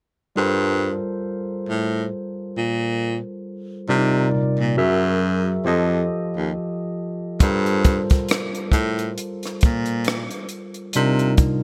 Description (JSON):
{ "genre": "R&B, neo-soul", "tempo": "68 BPM", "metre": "4/4", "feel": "swing 58% on 16ths", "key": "G minor", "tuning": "A4 = 440 Hz", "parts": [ { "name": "barky tine electric piano", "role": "accompaniment", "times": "0.4-11.6 s", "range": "C3 to E5", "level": "-25 LUFS", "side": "equal", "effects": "overdrive, subtle chorus" }, { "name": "bright baritone saxophone", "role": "bass", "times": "0.4-11.5 s", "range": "Eb2 to C3", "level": "-25 LUFS", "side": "equal", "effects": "none" }, { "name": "compact cocktail drum kit", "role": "drums", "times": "7.4-11.6 s", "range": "hi-hat, kick drum, rim click", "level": "-21 LUFS", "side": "equal", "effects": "gated reverb" } ], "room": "light reverb, studio reverb", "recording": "bright 1980s-style digital production", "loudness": "-22 LUFS", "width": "mono", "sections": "0.3-11.6 A section", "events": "none", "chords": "0.3 Gm11; 3.9 Cm11; 4.8 F#9; 5.6 F9; 7.4 Gm11; 10.9 Cm11" }